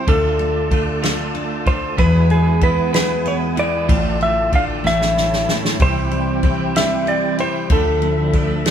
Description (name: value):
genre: six-eight pop ballad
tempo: 63 BPM (dotted quarters)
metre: 6/8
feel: straight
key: D minor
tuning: A4 = 444 Hz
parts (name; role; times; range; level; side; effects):
- clean lap steel guitar; melody; 0.0-8.7 s; G#4 to F5; -20 LUFS; equal; none
- nylon-string guitar; accompaniment; 0.0-8.7 s; E2 to F4; -23 LUFS; left 2 dB; none
- percussive tonewheel organ; sustained chords; 0.0-8.7 s; F3 to A5; -27 LUFS; equal; overdrive, chorus vibrato, stopped rotary speaker
- twelve-string electric guitar; arpeggios; 0.0-8.7 s; E2 to F4; -25 LUFS; right 4 dB; tremolo
- vintage muted fingered electric bass; bass; 0.0-8.7 s; A1 to E2; -23 LUFS; equal; none
- unplugged drum kit; drums; 0.1-8.7 s; kick drum, ride cymbal, snare drum; -21 LUFS; equal; none
room: wet studio reverb, RT60 0.5 s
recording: band playing live in one room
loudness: -15 LUFS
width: side -9 dB against mid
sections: 0.0-8.7 A section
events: drum fill 4.8-5.8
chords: 0.1 Dm; 2.0 E; 3.9 Dm/A; 4.8 A; 5.8 C; 7.7 Dmadd9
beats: | 0.08 1.03 | 1.99 2.94 | 3.89 4.84 | 5.79 6.75 | 7.70 8.65